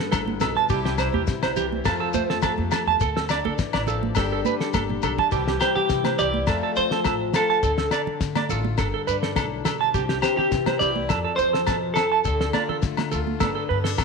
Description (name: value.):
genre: highlife guitar band.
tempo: 104 BPM.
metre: 4/4.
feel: straight.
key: C major.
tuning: A4 = 440 Hz.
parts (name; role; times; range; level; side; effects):
picked plugged-in swing-style acoustic guitar; accompaniment; 0.0-14.0 s; F2 to G4; -30 LUFS; left 13 dB; none.
clean electric guitar; arpeggios; 0.0-14.0 s; G4 to A5; -25 LUFS; right 11 dB; warbly pitch drift, slapback echo.
upright bass; bass; 0.1-14.0 s; G1 to F3; -30 LUFS; left 1 dB; none.
damped 70s drum kit; drums; 0.1-14.0 s; kick drum, snare drum, toms; -28 LUFS; left 4 dB; none.
agogo bells; percussion; 0.1-14.0 s; none; -31 LUFS; left 13 dB; none.
congas; percussion; 0.1-13.6 s; none; -31 LUFS; right 10 dB; none.
shekere; percussion; 0.1-14.0 s; none; -33 LUFS; left 6 dB; none.
semi-hollow electric guitar; melody; 5.6-12.8 s; G4 to D5; -24 LUFS; left 2 dB; slapback echo.
room: moderate echo chamber reverb, RT60 1.8 s, small room ambience.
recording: 1960s-style stereo with parts hard left and right.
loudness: -20 LUFS.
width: side -4 dB against mid.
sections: 0.0-5.3 A section; 5.3-14.0 B section.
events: drum fill 4.7-5.3.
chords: 0.0 Gadd9; 0.7 C; 1.9 F; 3.0 Dm; 4.2 Gadd9; 5.3 C; 6.5 F; 7.6 Dm; 8.8 Gadd9; 9.9 C; 11.1 F; 12.2 Dm; 13.4 Gadd9.